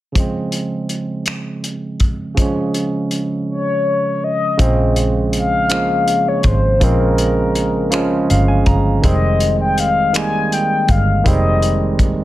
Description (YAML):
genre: slow six-eight R&B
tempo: 54 BPM (dotted quarters)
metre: 6/8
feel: straight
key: Bb dorian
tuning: A4 = 443 Hz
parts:
  - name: barky tine electric piano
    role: accompaniment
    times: 0.1-12.2 s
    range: Db3 to Bb5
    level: -18 LUFS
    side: right 2 dB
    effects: none
  - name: cloth-damped thuddy drum kit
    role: drums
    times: 0.2-12.2 s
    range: finger snaps, hi-hat, kick drum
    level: -18 LUFS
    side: equal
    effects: none
  - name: mellow horn-like synth lead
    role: melody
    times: 3.5-12.1 s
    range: Bb4 to Ab5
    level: -18 LUFS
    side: left 3 dB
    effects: chorus, slapback echo
  - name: vintage muted fingered electric bass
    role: bass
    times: 4.6-12.2 s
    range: F1 to Bb1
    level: -18 LUFS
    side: equal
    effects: none
room: light reverb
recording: none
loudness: -14 LUFS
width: side -15 dB against mid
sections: 0.2-4.6 A section; 4.6-12.2 B section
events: drums muted 3.5-4.6; tine electric piano fill 7.9-9.0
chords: 0.2 Dbmaj7; 4.6 Bbm7; 9.0 Fm9